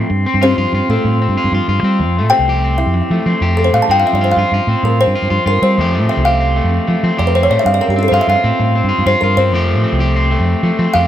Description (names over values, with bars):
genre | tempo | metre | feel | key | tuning
highlife guitar band | 127 BPM (dotted quarters) | 12/8 | straight | F major | A4 = 440 Hz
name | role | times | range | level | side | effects
electric guitar at the edge of break-up | accompaniment | 0.0-11.1 s | F2 to G4 | -17 LUFS | left 1 dB | none
fingered electric bass | bass | 0.1-11.1 s | C2 to G3 | -15 LUFS | equal | none
kalimba | melody | 0.4-11.1 s | A3 to A5 | -16 LUFS | equal | tape echo
room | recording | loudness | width
light reverb, small room ambience | none | -12 LUFS | side -11 dB against mid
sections
0.0-11.1 A section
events
kalimba solo 0.0-11.1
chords
0.1 Csus4/G; 2.0 Fadd9; 3.9 Csus4/G; 5.8 Fadd9; 7.7 Csus4/G; 9.5 Fadd9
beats
| 0.10 0.58 1.05 1.52 | 1.99 2.47 2.94 3.41 | 3.88 4.35 4.83 5.30 | 5.77 6.24 6.71 7.18 | 7.65 8.12 8.59 9.06 | 9.53 10.00 10.47 10.94